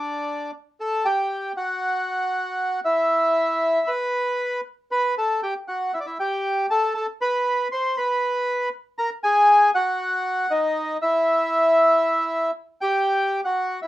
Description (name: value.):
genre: tango.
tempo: 118 BPM.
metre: 4/4.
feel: rubato.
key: E minor.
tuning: A4 = 440 Hz.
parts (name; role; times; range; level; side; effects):
bandoneon; solo; 0.0-13.9 s; D4 to C6; -20 LUFS; equal; none.
room: wet small room ambience, RT60 0.5 s.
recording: rough home demo mix.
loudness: -20 LUFS.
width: side -15 dB against mid.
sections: 0.0-13.1 A section.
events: none.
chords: 0.0 N.C.; 0.8 Gsus2; 1.8 N.C.; 4.9 F#madd11; 5.9 A5/E; 6.9 Amadd9; 8.0 N.C.; 9.0 F#; 10.0 D#m; 11.0 Em; 13.1 Emadd9.